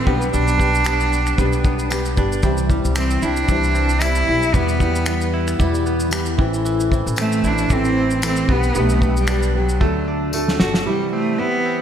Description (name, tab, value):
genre	acoustic pop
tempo	114 BPM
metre	4/4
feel	swing 55% on 16ths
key	G major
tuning	A4 = 440 Hz
part	bright cello	melody	0.0-11.8 s	F#3 to E4	-21 LUFS	right 2 dB	digital delay
part	nylon-string guitar	accompaniment	0.0-11.8 s	E2 to B4	-22 LUFS	left 1 dB	double-tracked left and right
part	direct-recorded clean electric guitar	arpeggios	0.0-11.8 s	E3 to F#4	-28 LUFS	right 3 dB	slapback echo
part	upright bass	bass	0.0-10.8 s	G1 to E2	-21 LUFS	equal	none
part	cloth-damped thuddy drum kit	drums	0.1-10.9 s	finger snaps, kick drum, shaker, snare drum	-22 LUFS	equal	none
part	tambourine	percussion	0.8-10.5 s	none	-35 LUFS	left 6 dB	none
room	moderate lush hall reverb, RT60 1.9 s, studio reverb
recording	big arena sound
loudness	-16 LUFS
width	side -9 dB against mid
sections	0.0-10.9 A section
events	drum fill 9.8-10.9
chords	0.1 G/B; 2.4 C; 4.5 Em; 6.4 Am; 8.5 G/B; 9.8 D; 10.9 C